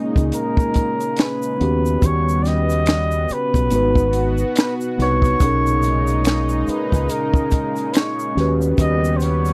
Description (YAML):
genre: R&B, neo-soul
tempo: 71 BPM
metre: 4/4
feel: swing 60% on 16ths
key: B major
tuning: A4 = 440 Hz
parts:
  - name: mellow tine electric piano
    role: accompaniment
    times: 0.0-9.5 s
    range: A#3 to B4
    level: -25 LUFS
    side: equal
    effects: none
  - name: lush unison pad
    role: sustained chords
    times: 0.0-9.5 s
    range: A#2 to F#4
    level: -29 LUFS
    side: equal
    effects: chorus
  - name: deep dub fingered electric bass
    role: bass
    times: 0.2-9.5 s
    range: G#1 to D#2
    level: -22 LUFS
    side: equal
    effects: none
  - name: compact cocktail drum kit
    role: drums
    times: 0.2-9.5 s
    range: hi-hat, kick drum, snare drum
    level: -20 LUFS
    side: equal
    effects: none
  - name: egg shaker and finger snaps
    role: percussion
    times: 0.2-9.5 s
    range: none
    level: -37 LUFS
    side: equal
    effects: none
  - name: trumpet with bucket mute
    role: melody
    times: 0.3-9.5 s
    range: A#4 to D#5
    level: -25 LUFS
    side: equal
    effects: none
room: little or no reverb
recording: dry, close 1970s-style studio recording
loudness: -19 LUFS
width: mono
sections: 0.0-9.5 A section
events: none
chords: 0.0 Bmaj13; 1.6 D#7alt; 3.7 G#m7; 5.4 Bmaj13; 8.4 D#7alt